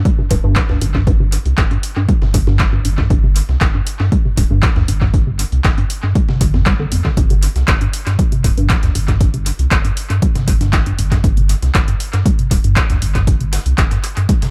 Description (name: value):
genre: acid house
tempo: 118 BPM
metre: 4/4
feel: straight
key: unclear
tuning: A4 = 440 Hz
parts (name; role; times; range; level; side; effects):
- deep acid bass; riff; 0.0-14.5 s; F2 to G3; -20 LUFS; equal; overdrive, analog chorus, sidechain pumping, tape echo
- dusty soul sampler-style drum kit; drums; 0.1-14.5 s; hi-hat, snare drum; -35 LUFS; equal; overdrive, sidechain pumping on hats, high-pass filter on hats, high-pass filter on snare, tape echo
- electronic kick drum; drums; 0.1-14.4 s; none; -18 LUFS; equal; none
- warm sub bass; bass; 0.3-14.5 s; D1 to D2; -20 LUFS; equal; sidechain pumping
- punchy analog drum machine; drums; 0.3-14.5 s; handclaps, hi-hat; -25 LUFS; equal; tape echo
room: little or no reverb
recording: echo-heavy mix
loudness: -15 LUFS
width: mono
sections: 0.0-14.5 A section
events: none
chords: none